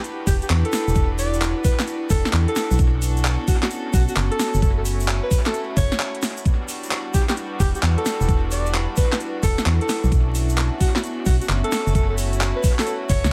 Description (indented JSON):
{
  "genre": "UK garage, two-step garage",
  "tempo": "131 BPM",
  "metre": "4/4",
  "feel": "swing 66% on 16ths",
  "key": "E dorian",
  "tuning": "A4 = 440 Hz",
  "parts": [
    { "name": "clear chamber violin section", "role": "sustained chords", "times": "0.0-13.3 s", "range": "G3 to B4", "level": "-34 LUFS", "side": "equal", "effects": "sidechain pumping" },
    { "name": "garage drum kit", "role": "drums", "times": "0.0-13.3 s", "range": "handclaps, hi-hat, snare drum", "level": "-29 LUFS", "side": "equal", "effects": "small room reverb, dub echo" },
    { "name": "egg shaker", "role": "percussion", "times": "0.0-13.3 s", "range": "none", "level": "-38 LUFS", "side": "equal", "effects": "none" },
    { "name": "warbly tape-like pad", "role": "texture", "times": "0.0-13.3 s", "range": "B3 to C#6", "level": "-34 LUFS", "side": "equal", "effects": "chorus, built-in reverb, sidechain pumping" },
    { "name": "warm alto saxophone", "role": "melody", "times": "0.3-13.3 s", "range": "F#4 to D5", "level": "-30 LUFS", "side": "equal", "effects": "dub echo" },
    { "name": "organ-like FM bass", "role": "bass", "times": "0.3-13.3 s", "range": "E1 to E2", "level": "-23 LUFS", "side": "equal", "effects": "none" },
    { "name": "electronic kick drum", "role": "drums", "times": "0.3-13.2 s", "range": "none", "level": "-22 LUFS", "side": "equal", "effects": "small room reverb" }
  ],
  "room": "studio reverb",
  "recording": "echo-heavy mix, vinyl crackle",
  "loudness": "-21 LUFS",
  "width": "mono",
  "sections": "0.0-13.3 A section",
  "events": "none",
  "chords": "0.0 Em9; 2.8 Bm9; 4.6 F#m7; 6.5 Em9; 10.1 Bm9; 12.0 F#m7"
}